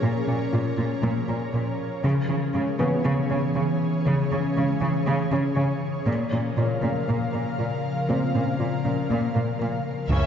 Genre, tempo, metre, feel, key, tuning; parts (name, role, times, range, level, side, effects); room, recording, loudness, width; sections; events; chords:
cinematic; 119 BPM; 4/4; straight; A4 = 440 Hz
ethereal airy pad; sustained chords; 0.0-10.3 s; C#3 to E#5; -27 LUFS; equal; ensemble chorus, built-in reverb
thumb-piano-like synth pluck; arpeggios; 0.0-10.3 s; C#3 to A#4; -31 LUFS; left 4 dB; chorus, tape echo
rich symphonic cello section; bass; 0.0-10.2 s; A#2 to C#3; -25 LUFS; right 1 dB
felt-muted upright piano; texture; 0.0-10.1 s; B3 to C#5; -33 LUFS; equal; tape echo
rich symphonic violin section; melody; 10.1-10.3 s; E5; -32 LUFS; left 5 dB
warm symphonic violin section; second line; 10.1-10.3 s; C#4; -32 LUFS; left 4 dB
rich symphonic viola section; accompaniment; 10.1-10.3 s; C#4; -32 LUFS; right 2 dB
round analog bass; riff; 10.1-10.3 s; C#2; -25 LUFS; right 1 dB
rich symphonic double bass section; bass; 10.1-10.2 s; C#2; -24 LUFS; right 1 dB
sub drop; sound effects; 10.1-10.3 s; -26 LUFS; left 1 dB
wet scoring stage reverb, RT60 1.9 s; heard from further back in the room, nothing above 7.8 kHz; -22 LUFS; side -8 dB against mid
0.0-10.1 A section
impact 10.1
0.0 A#m; 2.0 C#m; 6.1 A#m